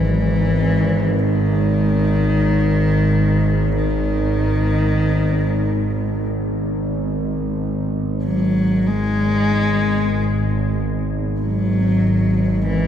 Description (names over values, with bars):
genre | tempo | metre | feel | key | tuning
dark ambient drone | 47 BPM | 4/4 | straight | G# minor | A4 = 440 Hz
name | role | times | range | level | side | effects
dark cello | melody | 0.0-12.9 s | D#3 to G#3 | -20 LUFS | left 1 dB | dub echo
dark analog pad | sustained chords | 0.0-12.9 s | B3 to D#5 | -38 LUFS | right 1 dB | none
bowed-like drone | drone | 0.0-12.9 s | G#1 | -18 LUFS | equal | built-in reverb
room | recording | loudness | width
moderate spring reverb, RT60 2.3 s | echo-heavy mix | -16 LUFS | side -9 dB against mid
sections
0.0-12.9 A section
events
filter sweep on synth drone 0.0-12.9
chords
0.0 G#m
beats
1.18 2.46 | 3.73 5.01 6.29 7.56 | 8.84 10.12 11.39 12.67